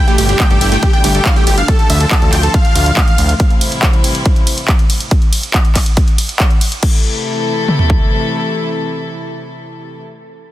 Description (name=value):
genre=uplifting trance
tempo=140 BPM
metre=4/4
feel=straight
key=A minor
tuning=A4 = 440 Hz
part: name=big supersaw lead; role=melody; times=0.0-3.3 s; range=G4 to G5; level=-19 LUFS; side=equal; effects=cassette tape, sidechain pumping, tape echo
part: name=plucky unison lead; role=second line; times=0.0-1.7 s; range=G4 to G5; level=-27 LUFS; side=left 1 dB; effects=none
part: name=warm chamber string section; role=sustained chords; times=0.0-10.0 s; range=C2 to A4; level=-20 LUFS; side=left 2 dB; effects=sidechain pumping
part: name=wide unison pluck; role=arpeggios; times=0.1-1.6 s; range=A3 to A4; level=-22 LUFS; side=right 3 dB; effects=phaser, sidechain pumping, tape echo
part: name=punchy analog drum machine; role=drums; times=0.1-6.9 s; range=crash cymbal, handclaps, hi-hat, ride cymbal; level=-18 LUFS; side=equal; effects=none
part: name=fat analog bass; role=bass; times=0.2-3.3 s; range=G1 to D2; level=-14 LUFS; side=equal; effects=sidechain pumping
part: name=big-room dance drum kit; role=drums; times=0.4-8.0 s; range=kick drum, toms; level=-12 LUFS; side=equal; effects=overdrive
room=digital ambience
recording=dense, heavily limited modern master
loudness=-10 LUFS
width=side -14 dB against mid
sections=0.0-6.8 A section; 6.8-10.3 B section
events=drop 0.0-6.8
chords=0.0 G; 1.7 Dm; 3.4 Am/C; 5.1 N.C.; 6.8 Am